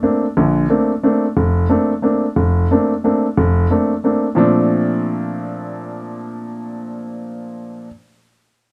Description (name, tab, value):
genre	jazz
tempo	180 BPM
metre	3/4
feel	swing 64% on 8ths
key	Bb major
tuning	A4 = 440 Hz
part	warm upright piano	solo	0.0-7.9 s	F1 to D4	-18 LUFS	equal	none
room	little or no reverb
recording	close, detailed microphones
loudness	-16 LUFS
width	mono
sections	0.4-4.4 A section; 4.4-6.4 B section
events	none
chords	0.4 Bbmaj9